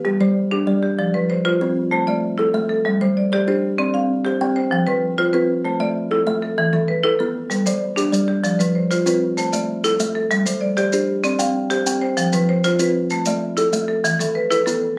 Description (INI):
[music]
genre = southern african traditional, mbira-style interlocking cycle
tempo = 129 BPM (dotted quarters)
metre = 12/8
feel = straight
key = G mixolydian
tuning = A4 = 441 Hz
[part]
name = kalimba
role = arpeggios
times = 0.0-15.0 s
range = E3 to G5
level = -23 LUFS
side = equal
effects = none
[part]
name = marimba with hard mallets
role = arpeggios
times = 0.0-15.0 s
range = E3 to F5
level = -22 LUFS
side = equal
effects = none
[part]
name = maracas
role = percussion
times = 7.5-14.8 s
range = none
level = -30 LUFS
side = equal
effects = none
[sound]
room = moderate studio reverb, RT60 0.6 s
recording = recorded on a phone in the room, club reverb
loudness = -20 LUFS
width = mono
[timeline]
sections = 0.0-15.0 A section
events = none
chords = 0.0 G; 1.0 F5; 1.9 Am; 2.9 G5; 3.8 C5; 4.7 F5; 5.6 Am; 6.6 E5; 7.5 G; 8.4 F5; 9.4 Am; 10.3 G5; 11.2 C5; 12.2 F5; 13.1 A5; 14.0 E5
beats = | 0.05 0.52 0.98 1.45 | 1.92 2.38 2.85 3.32 | 3.78 4.25 4.71 5.18 | 5.65 6.11 6.58 7.04 | 7.51 7.98 8.44 8.91 | 9.38 9.84 10.31 10.78 | 11.24 11.71 12.18 12.64 | 13.11 13.58 14.05 14.52